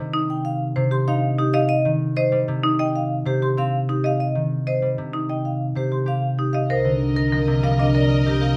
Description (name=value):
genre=classical, minimalist pattern music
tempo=96 BPM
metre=4/4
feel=straight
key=unclear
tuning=A4 = 440 Hz
part: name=concert harp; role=accompaniment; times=0.0-8.6 s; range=C3 to G4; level=-24 LUFS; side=equal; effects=none
part: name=marimba with hard mallets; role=arpeggios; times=0.1-8.6 s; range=D4 to Eb5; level=-28 LUFS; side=equal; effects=none
part: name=vibraphone with medium hard mallets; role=melody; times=0.3-8.6 s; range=G4 to C6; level=-28 LUFS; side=equal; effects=none
part: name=rich studio string section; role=sustained chords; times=6.7-8.6 s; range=Bb4 to Eb5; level=-32 LUFS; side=equal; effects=none
part: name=dark double bass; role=bass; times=6.7-8.6 s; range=C2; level=-26 LUFS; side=equal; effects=none
room=moderate large studio reverb, RT60 0.8 s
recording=none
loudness=-21 LUFS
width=mono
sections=0.0-6.7 A section; 6.7-8.6 B section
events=none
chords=0.0 Cm; 6.7 Cm9